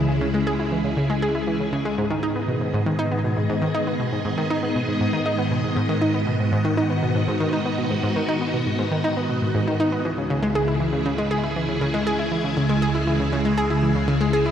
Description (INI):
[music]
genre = ambient, sequencer-driven space music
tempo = 119 BPM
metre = 4/4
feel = straight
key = G# minor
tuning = A4 = 444 Hz
[part]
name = phased string machine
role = sustained chords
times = 0.0-14.5 s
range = C#2 to D#5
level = -23 LUFS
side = equal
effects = ensemble chorus, phaser, shimmer reverb
[part]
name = analog pluck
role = riff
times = 0.0-14.5 s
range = G#2 to G#4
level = -23 LUFS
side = equal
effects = chorus, analog delay, shimmer reverb
[sound]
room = wet huge ambient reverb, RT60 8.6 s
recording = none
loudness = -20 LUFS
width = side -9 dB against mid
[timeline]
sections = 0.0-14.5 A section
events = none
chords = 0.0 C#m; 2.0 G#m; 10.0 C#m